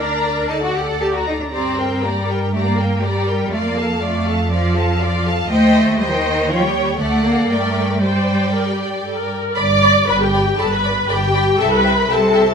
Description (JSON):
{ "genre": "quick classical-period movement for string orchestra", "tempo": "119 BPM", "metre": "4/4", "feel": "straight", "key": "G minor", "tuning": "A4 = 440 Hz", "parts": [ { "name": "warm symphonic violin section", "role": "melody", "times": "0.0-12.5 s", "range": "F5 to D6", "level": "-25 LUFS", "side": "left 3 dB", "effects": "none" }, { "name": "rich symphonic violin section", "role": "second line", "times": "0.0-12.4 s", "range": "Bb4 to B5", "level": "-24 LUFS", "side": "left 1 dB", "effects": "none" }, { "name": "warm symphonic viola section", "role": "accompaniment", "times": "0.0-12.5 s", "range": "F4 to D5", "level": "-20 LUFS", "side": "equal", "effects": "none" }, { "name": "rich symphonic cello section", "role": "bass", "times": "0.0-12.5 s", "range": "G2 to A4", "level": "-20 LUFS", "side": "equal", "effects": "none" }, { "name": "warm symphonic double bass section", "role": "bass", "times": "0.0-12.5 s", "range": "G1 to G2", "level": "-22 LUFS", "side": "right 2 dB", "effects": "none" } ], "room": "wet stone room reverb, RT60 1.0 s", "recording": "minimal, uncompressed stereo recording", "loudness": "-15 LUFS", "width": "side -6 dB against mid", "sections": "0.0-9.6 A section; 9.6-12.5 B section", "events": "none", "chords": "0.5 D; 1.5 Gm; 3.5 Dm/F; 5.5 Cm/Eb; 6.5 Eb7; 7.0 D; 7.5 Gm; 9.6 G; 11.6 C", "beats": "0.50 1.01 | 1.53 2.04 2.53 3.03 | 3.53 4.03 4.52 5.01 | 5.50 6.00 6.49 6.99 | 7.50 8.03 8.55 9.06 | 9.58 10.09 10.59 11.10 | 11.60 12.11" }